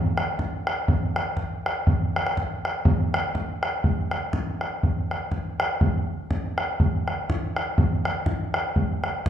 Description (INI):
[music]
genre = celtic folk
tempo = 122 BPM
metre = 2/4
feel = swing 57% on 8ths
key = none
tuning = none
[part]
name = bodhran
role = percussion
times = 0.2-9.3 s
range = none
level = -23 LUFS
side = equal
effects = none
[sound]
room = wet recital hall reverb, RT60 1.4 s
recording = minimal, uncompressed stereo recording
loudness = -23 LUFS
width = side -10 dB against mid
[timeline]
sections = 0.0-2.8 A section; 2.8-9.3 B section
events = none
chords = none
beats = 0.38 | 0.87 1.36 | 1.85 2.35 | 2.84 3.33 | 3.83 4.32 | 4.81 5.30 | 5.80 6.29 | 6.78 7.28 | 7.77 8.26 | 8.76 9.25